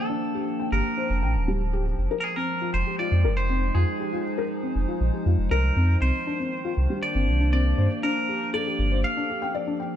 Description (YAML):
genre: IDM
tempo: 119 BPM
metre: 4/4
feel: straight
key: F dorian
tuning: A4 = 440 Hz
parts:
  - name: twangy electric guitar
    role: melody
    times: 0.0-9.5 s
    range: Ab4 to F5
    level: -30 LUFS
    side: right 1 dB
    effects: vintage 12-bit sampler grit, tape echo
  - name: warbly tape-like pad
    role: sustained chords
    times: 0.0-10.0 s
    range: Eb3 to A5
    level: -30 LUFS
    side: equal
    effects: chorus, built-in reverb
  - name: felt-muted upright piano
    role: arpeggios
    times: 0.1-9.9 s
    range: G3 to G5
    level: -30 LUFS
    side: left 4 dB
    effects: vintage 12-bit sampler grit, digital delay
  - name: warm sub bass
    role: bass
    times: 0.7-9.0 s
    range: D1 to G2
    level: -22 LUFS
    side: equal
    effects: none
room: little or no reverb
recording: none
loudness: -22 LUFS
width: side -10 dB against mid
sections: 0.0-10.0 A section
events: break 9.0-10.0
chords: 0.0 Gm9; 2.0 Fm9; 6.0 Cm9; 7.8 Gm9